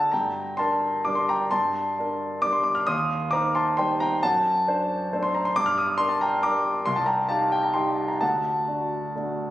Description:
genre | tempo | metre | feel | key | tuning
classical, piano waltz | 125-142 BPM | 3/4 | rubato | G minor | A4 = 440 Hz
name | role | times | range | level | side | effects
warm grand piano | solo | 0.0-9.5 s | C2 to F6 | -22 LUFS | equal | none
room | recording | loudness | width
moderate recital hall reverb, RT60 1.7 s | recorded on a phone in the room, studio reverb | -22 LUFS | side -14 dB against mid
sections
0.1-9.5 A section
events
none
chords
0.1 Gm; 2.9 Cm/Eb; 4.2 D7/F#; 5.5 Gm; 6.9 Cm; 8.2 D

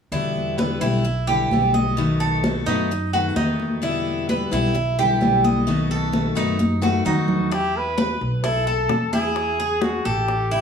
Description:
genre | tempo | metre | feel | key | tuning
latin, Cuban son and guajira | 130 BPM | 4/4 | straight | E minor | A4 = 441 Hz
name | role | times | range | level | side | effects
picked steel-string acoustic guitar | accompaniment | 0.1-7.5 s | B2 to F#4 | -24 LUFS | left 5 dB | none
Cuban tres | arpeggios | 0.1-10.6 s | D#4 to D#5 | -24 LUFS | right 3 dB | none
upright bass | bass | 0.1-10.6 s | A1 to F#2 | -26 LUFS | right 1 dB | none
congas | percussion | 0.1-10.6 s | none | -25 LUFS | left 1 dB | none
warm trumpet | melody | 7.1-10.6 s | F#4 to B4 | -24 LUFS | left 1 dB | slapback echo
bongos | percussion | 7.5-10.5 s | none | -30 LUFS | left 7 dB | none
room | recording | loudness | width
moderate studio reverb, RT60 0.8 s | studio reverb | -19 LUFS | side -7 dB against mid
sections
0.1-7.5 A section; 7.5-10.6 B section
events
drum fill 6.6-7.5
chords
0.1 Em7; 2.0 B7; 3.8 Em7; 5.7 B7; 7.5 E5; 8.4 B7sus4; 9.4 E

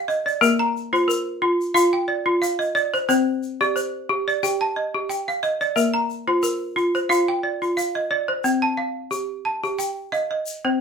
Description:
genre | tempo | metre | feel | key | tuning
west african traditional, West African string and xylophone music | 90 BPM | 4/4 | swing 54% on 16ths | C dorian | A4 = 440 Hz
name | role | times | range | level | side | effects
balafon | arpeggios | 0.0-10.8 s | Bb3 to Bb5 | -20 LUFS | equal | none
egg shaker | percussion | 0.1-10.6 s | none | -34 LUFS | left 5 dB | none
room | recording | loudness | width
moderate studio reverb, RT60 0.6 s | minimal, uncompressed stereo recording | -20 LUFS | side -6 dB against mid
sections
0.0-8.4 A section; 8.4-10.8 B section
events
none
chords
0.4 Bb; 3.1 Cm; 5.8 Bb; 8.4 Cm

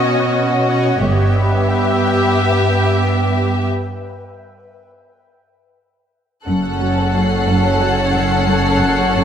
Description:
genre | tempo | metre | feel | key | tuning
cinematic, suspense film score | 89 BPM | 4/4 | straight | unclear | A4 = 440 Hz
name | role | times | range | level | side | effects
rich studio violin section | melody | 0.0-9.2 s | D#5 to F#5 | -24 LUFS | left 5 dB | none
clear studio violin section | second line | 0.0-9.2 s | F#4 to A4 | -20 LUFS | left 2 dB | none
rich studio viola section | accompaniment | 0.0-9.2 s | B3 to C#4 | -22 LUFS | right 2 dB | none
bubbling stepped-filter texture | sustained chords | 0.0-9.2 s | B4 to A5 | -22 LUFS | left 1 dB | chorus, built-in reverb
warm studio cello section | bass | 0.0-9.2 s | F#2 to B2 | -20 LUFS | right 2 dB | none
rich studio double bass section | bass | 1.0-1.6, 6.5-9.2 s | F#1 to G1 | -21 LUFS | right 2 dB | none
rich studio cello section | riff | 6.5-9.2 s | F#2 to F#3 | -21 LUFS | right 1 dB | none
warm studio violin section | texture | 6.5-9.2 s | F#6 to B#6 | -27 LUFS | left 2 dB | none
room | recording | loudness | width
moderate scoring stage reverb, RT60 1.8 s | close, detailed microphones | -13 LUFS | side -8 dB against mid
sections
0.0-6.5 A section; 6.5-9.2 B section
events
break 3.7-6.5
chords
0.0 Badd9; 1.0 G6; 3.7 N.C.; 6.5 F#m

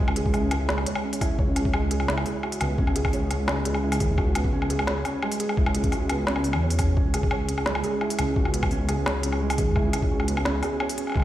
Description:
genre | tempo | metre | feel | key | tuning
half-time drum and bass | 172 BPM | 4/4 | half-time | unclear | A4 = 440 Hz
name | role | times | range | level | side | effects
felt-muted upright piano | arpeggios | 0.0-11.2 s | G#3 to C#5 | -28 LUFS | right 2 dB | dub echo
dark detuned saw bass | bass | 0.0-11.2 s | C#2 to E2 | -26 LUFS | equal | none
organic electronic drum kit | drums | 0.1-11.2 s | hi-hat, snare drum, woodblock | -29 LUFS | left 1 dB | none
electronic kick drum | drums | 0.3-11.2 s | none | -25 LUFS | equal | overdrive
room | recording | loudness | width
light reverb | played on a big sound system in a bare room, stone room reverb | -22 LUFS | side -13 dB against mid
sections
0.0-11.2 A section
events
none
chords
0.0 C#m; 1.4 E/C#

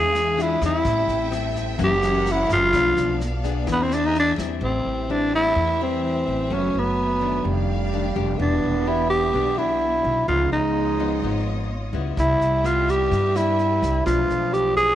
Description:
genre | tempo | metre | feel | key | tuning
bossa nova | 127 BPM | 4/4 | straight | A minor | A4 = 439 Hz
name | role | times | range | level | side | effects
growling tenor saxophone | melody | 0.0-14.9 s | B3 to G#4 | -21 LUFS | equal | none
nylon-string guitar | accompaniment | 0.0-14.9 s | F2 to A4 | -29 LUFS | left 10 dB | none
warm studio string section | sustained chords | 0.0-14.9 s | A3 to G#5 | -33 LUFS | equal | none
upright bass | bass | 0.0-14.9 s | E1 to G2 | -26 LUFS | equal | none
vintage brush drum kit | drums | 0.1-4.5, 12.2-14.8 s | kick drum, rim click, snare drum | -34 LUFS | equal | none
warm French horn | second line | 4.6-14.9 s | E3 to B3 | -29 LUFS | right 10 dB | none
room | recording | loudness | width
moderate spring reverb, RT60 1.6 s, studio reverb | 1960s-style stereo with parts hard left and right | -19 LUFS | side -12 dB against mid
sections
0.0-4.6 A section; 4.6-14.9 B section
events
tenor saxophone solo 0.0-4.6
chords
0.0 E7b9; 0.8 Am7; 1.8 F#7; 2.7 Bm7b5; 3.7 E7; 4.6 Am7; 6.5 F#m11; 7.5 F13; 8.4 Em7; 10.3 C#9; 12.2 Cmaj7; 14.1 Bm7b5

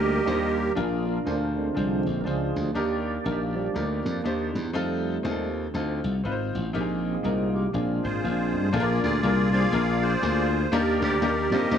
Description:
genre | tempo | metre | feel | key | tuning
uptempo gospel | 121 BPM | 4/4 | swing 60% on 8ths | unclear | A4 = 440 Hz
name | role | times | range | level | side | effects
musette accordion | melody | 0.0-0.7, 8.0-11.8 s | F4 to F5 | -26 LUFS | right 1 dB | slapback echo
bright grand piano | accompaniment | 0.0-11.8 s | Bb2 to C5 | -29 LUFS | left 4 dB | none
tonewheel organ | sustained chords | 0.0-8.7 s | D3 to D5 | -29 LUFS | right 5 dB | slow rotary speaker, overdrive, chorus vibrato
glassy slap bass | bass | 0.0-11.8 s | Ab1 to G2 | -27 LUFS | equal | none
room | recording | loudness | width
moderate large studio reverb, RT60 0.9 s, small room ambience | none | -23 LUFS | side -8 dB against mid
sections
0.8-8.7 A section; 8.7-11.8 B section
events
tonewheel organ solo 0.8-8.7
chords
0.0 Ebmaj7; 0.8 Bb7; 2.8 Ebmaj7; 4.7 F7; 6.7 Bb7sus4; 7.7 Bb7; 10.7 Ebmaj7

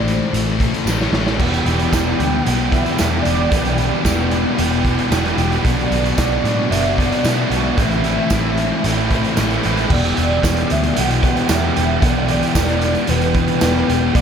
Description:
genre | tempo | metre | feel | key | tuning
rock, shoegaze and dream pop | 113 BPM | 4/4 | straight | E minor | A4 = 443 Hz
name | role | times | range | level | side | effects
warm velvety synth lead | melody | 0.0-14.2 s | B4 to G5 | -25 LUFS | right 2 dB | chorus, diffuse ambient delay
distorted electric guitar | riff | 0.0-9.9 s | A2 to E4 | -26 LUFS | equal | distortion
thick fuzz guitar | riff | 0.0-14.2 s | E2 to B3 | -21 LUFS | left 9 dB | distortion, lush chorus
vintage muted picked electric bass | bass | 0.0-14.2 s | E1 to B2 | -21 LUFS | right 1 dB | none
raw garage drum kit | drums | 0.1-14.2 s | crash cymbal, hi-hat, kick drum, snare drum | -21 LUFS | right 1 dB | none
tambourine | percussion | 0.9-13.7 s | none | -33 LUFS | right 13 dB | none
crunchy overdriven guitar | riff | 1.4-14.2 s | E2 to G4 | -22 LUFS | right 9 dB | reverse reverb
room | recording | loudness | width
moderate lush hall reverb, RT60 2.4 s | dreamy mix soaked in reverb | -15 LUFS | side -7 dB against mid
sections
0.0-9.9 A section; 9.9-14.2 A section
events
drum fill 0.9-1.4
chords
0.0 Am; 1.4 Em7; 5.7 Bm; 7.8 Am; 9.9 Em7

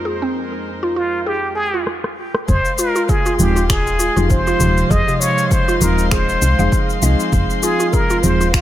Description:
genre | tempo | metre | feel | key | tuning
organic downtempo | 99 BPM | 4/4 | swing 56% on 16ths | F minor | A4 = 440 Hz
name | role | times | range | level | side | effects
muted felt-like synth keys | accompaniment | 0.0-8.5 s | F2 to C5 | -23 LUFS | right 1 dB | chorus, sidechain pumping, digital delay
rich chamber string section | sustained chords | 0.0-8.6 s | F2 to C6 | -26 LUFS | left 2 dB | sidechain pumping
mallet-like synth pluck | arpeggios | 0.0-8.5 s | C3 to F5 | -22 LUFS | right 1 dB | chorus, digital delay
electronic shaker, rim click and finger snaps | drums | 0.1-8.6 s | none | -23 LUFS | left 2 dB | low-pass filter on perc, low-pass filter on snare
trumpet with plunger mute | melody | 1.0-8.6 s | F4 to Eb5 | -20 LUFS | equal | digital delay
woody FM bass | bass | 2.5-8.6 s | Eb1 to C2 | -17 LUFS | equal | tube saturation
electronic kick drum | drums | 2.5-8.6 s | none | -19 LUFS | equal | none
room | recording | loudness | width
light reverb | none | -14 LUFS | side -12 dB against mid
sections
0.0-2.5 A section; 2.5-8.6 B section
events
filter sweep on synth pluck 0.0-2.5; drum fill 1.9-2.5; stop 1.9-2.5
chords
0.0 Abadd9/F; 2.5 Fm7

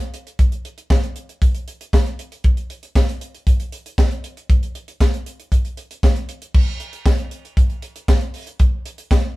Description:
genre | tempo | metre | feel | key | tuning
funk | 117 BPM | 4/4 | straight | none | none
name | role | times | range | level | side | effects
tight funk drum kit | drums | 0.0-9.2 s | crash cymbal, handclaps, hi-hat, kick drum, snare drum | -16 LUFS | equal | none
tambourine | percussion | 0.9-9.2 s | none | -42 LUFS | left 3 dB | none
room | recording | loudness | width
light reverb | band playing live in one room | -18 LUFS | side -19 dB against mid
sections
0.0-6.5 A section; 6.5-9.4 B section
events
none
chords
none

